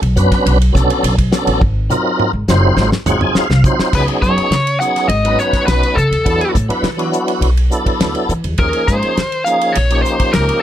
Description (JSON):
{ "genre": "electric jazz fusion", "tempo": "103 BPM", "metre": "4/4", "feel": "straight", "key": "C# dorian from 3.9 s", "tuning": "A4 = 441 Hz", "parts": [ { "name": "upright bass", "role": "bass", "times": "0.0-10.5 s", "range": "F#1 to E3", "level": "-16 LUFS", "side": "equal", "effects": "none" }, { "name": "damped 70s drum kit", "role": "drums", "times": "0.0-10.6 s", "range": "crash cymbal, hi-hat, kick drum, ride cymbal, snare drum, toms", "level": "-19 LUFS", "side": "equal", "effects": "none" }, { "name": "tonewheel organ", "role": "accompaniment", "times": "0.2-10.6 s", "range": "E#3 to G#5", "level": "-17 LUFS", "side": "right 1 dB", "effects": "slow rotary speaker, chorus vibrato" }, { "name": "biting lead guitar", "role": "melody", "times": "4.0-10.6 s", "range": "A4 to F#5", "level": "-17 LUFS", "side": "left 1 dB", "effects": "overdrive" } ], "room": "little or no reverb", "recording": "none", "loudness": "-12 LUFS", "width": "side -11 dB against mid", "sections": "0.0-3.9 A section; 3.9-10.6 B section", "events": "drum fill 1.6-3.9; tonewheel organ fill 2.8-3.9", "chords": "0.0 Bm9; 1.6 G#13; 3.9 C#9sus4; 6.3 E9sus4; 8.6 D#9sus4" }